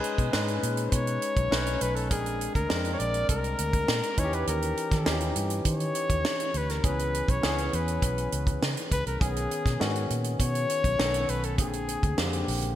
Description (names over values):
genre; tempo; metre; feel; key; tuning
polished 1980s jazz-funk pop; 101 BPM; 4/4; straight; B major; A4 = 440 Hz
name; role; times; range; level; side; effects
warm flugelhorn; melody; 0.0-12.4 s; G#4 to D5; -31 LUFS; left 2 dB; none
barky tine electric piano; accompaniment; 0.0-12.8 s; C#3 to B4; -32 LUFS; left 1 dB; wide subtle chorus
tight funk drum kit; drums; 0.0-12.8 s; hi-hat, kick drum, snare drum; -29 LUFS; right 1 dB; gated reverb
vintage muted fingered electric bass; bass; 0.2-12.7 s; A#1 to D#3; -31 LUFS; equal; none
room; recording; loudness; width
moderate lush hall reverb, RT60 2.1 s; bright 1980s-style digital production; -25 LUFS; side -12 dB against mid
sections
0.0-12.8 A section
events
none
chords
0.0 B69; 1.5 B9; 2.1 A#9; 4.2 D#7b9; 6.8 C#m7; 9.2 B69; 11.0 B9; 11.6 A#9